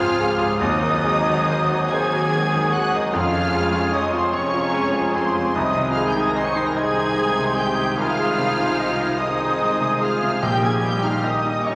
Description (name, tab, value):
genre	classical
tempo	49 BPM (dotted quarters)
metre	12/8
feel	rubato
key	Ab major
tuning	A4 = 440 Hz
part	clear concert grand piano	melody	0.0-11.8 s	Bb1 to Eb5	-26 LUFS	equal	none
part	rich studio violin section	melody	0.0-11.8 s	C6 to Db7	-30 LUFS	equal	none
part	flute section	second line	0.0-11.8 s	Ab5 to Eb6	-34 LUFS	equal	none
part	rich studio violin section	second line	0.0-11.8 s	C5 to Db6	-30 LUFS	equal	none
part	warm clarinet	second line	0.0-11.8 s	Eb4 to Ab4	-38 LUFS	equal	none
part	warm oboe	second line	0.0-11.8 s	C5 to Gb5	-35 LUFS	equal	none
part	mellow bassoon	accompaniment	0.0-11.8 s	Ab3 to C4	-37 LUFS	equal	none
part	rich studio viola section	accompaniment	0.0-11.8 s	C4 to Db5	-30 LUFS	equal	none
part	mellow French horn section	sustained chords	0.0-11.8 s	Eb3 to Eb4	-32 LUFS	equal	none
part	warm trumpet section	stabs	0.0-11.8 s	G4 to Ab4	-30 LUFS	equal	none
part	clear studio cello section	bass	0.0-11.8 s	F2 to Eb3	-34 LUFS	equal	none
part	rich studio double bass section	bass	0.0-11.8 s	F1 to Eb2	-36 LUFS	equal	none
room	wet concert hall reverb, RT60 2.2 s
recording	vinyl crackle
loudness	-21 LUFS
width	mono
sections	0.0-11.8 A section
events	none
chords	0.0 Dbmaj7; 0.6 Ab7/Eb; 3.1 Db/F; 5.5 Ab/C; 10.4 Eb7/Bb